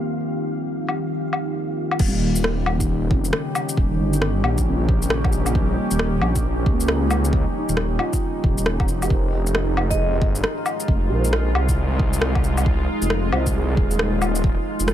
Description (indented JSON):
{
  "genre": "future garage",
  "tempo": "135 BPM",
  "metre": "4/4",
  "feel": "swing 62% on 16ths",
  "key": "unclear",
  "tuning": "A4 = 441 Hz",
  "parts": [
    { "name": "felt-muted upright piano", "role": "accompaniment", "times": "0.0-14.9 s", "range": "Db3 to Eb5", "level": "-28 LUFS", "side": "equal", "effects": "sidechain pumping, tape echo" },
    { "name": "deep dark ambient pad", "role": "sustained chords", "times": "0.0-14.9 s", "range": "Eb3 to G4", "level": "-27 LUFS", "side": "equal", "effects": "chorus, built-in reverb, sidechain pumping" },
    { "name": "flickering grainy texture", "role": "texture", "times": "0.0-2.0 s", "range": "F5", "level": "-40 LUFS", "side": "equal", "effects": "built-in reverb" },
    { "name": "deep house drum kit", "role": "drums", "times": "0.9-14.9 s", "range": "crash cymbal, rim click, shaker, woodblock", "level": "-25 LUFS", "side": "left 1 dB", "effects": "overdrive" },
    { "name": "swelling detuned saw bass", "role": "bass", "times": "2.0-14.9 s", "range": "Eb1 to Db2", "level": "-22 LUFS", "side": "equal", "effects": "sidechain pumping" },
    { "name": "electronic kick drum", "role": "drums", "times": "2.0-14.6 s", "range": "none", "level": "-22 LUFS", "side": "equal", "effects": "overdrive" },
    { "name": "vibraphone with medium mallets", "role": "melody", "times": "9.9-10.1 s", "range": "Eb5", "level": "-30 LUFS", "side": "right 2 dB", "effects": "ping-pong delay" }
  ],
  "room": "digital ambience",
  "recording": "low-pass filter",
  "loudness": "-18 LUFS",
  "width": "side -11 dB against mid",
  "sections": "0.0-2.0 A section; 2.0-14.9 B section",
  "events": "filter sweep 0.0-2.0",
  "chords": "0.0 Eb9; 9.1 Fm9",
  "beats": "| 0.22 0.66 1.10 1.55 | 1.99 2.44 2.88 3.33 | 3.77 4.22 4.66 5.11 | 5.55 5.99 6.44 6.88 | 7.33 7.77 8.22 8.66 | 9.11 9.55 9.99 10.44 | 10.88 11.33 11.77 12.22 | 12.66 13.11 13.55 13.99 | 14.44 14.88"
}